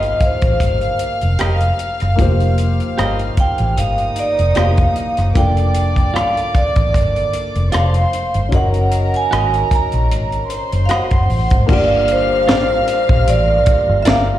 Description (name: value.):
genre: lush 1970s-style soul.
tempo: 76 BPM.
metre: 4/4.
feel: swing 54% on 16ths.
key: unclear.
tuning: A4 = 440 Hz.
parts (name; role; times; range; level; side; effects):
vibraphone with hard mallets; melody; 0.0-14.4 s; C5 to Bb5; -18 LUFS; right 2 dB; slapback echo.
warm studio violin section; second line; 0.0-14.4 s; Eb4 to F6; -24 LUFS; equal; slapback echo.
dark grand piano; accompaniment; 0.0-14.4 s; Bb3 to Eb5; -25 LUFS; left 4 dB; slapback echo.
clean electric guitar; riff; 0.0-14.3 s; F4 to Eb5; -25 LUFS; right 4 dB; slapback echo.
vintage muted fingered electric bass; bass; 0.0-14.4 s; F1 to Bb1; -17 LUFS; equal; none.
tight funk drum kit; drums; 0.0-14.3 s; crash cymbal, hi-hat, kick drum, rim click, snare drum; -18 LUFS; equal; none.
tonewheel organ; sustained chords; 11.7-14.4 s; G3 to Bb4; -29 LUFS; right 1 dB; fast rotary speaker, overdrive.
room: small room ambience.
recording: live gig heard through the venue's PA, recital hall reverb.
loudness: -13 LUFS.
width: side -13 dB against mid.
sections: 0.0-11.7 A section; 11.7-14.4 B section.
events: none.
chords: 0.0 F9sus4; 5.4 Bbmaj7/F; 8.5 Gb6; 11.7 Gm7.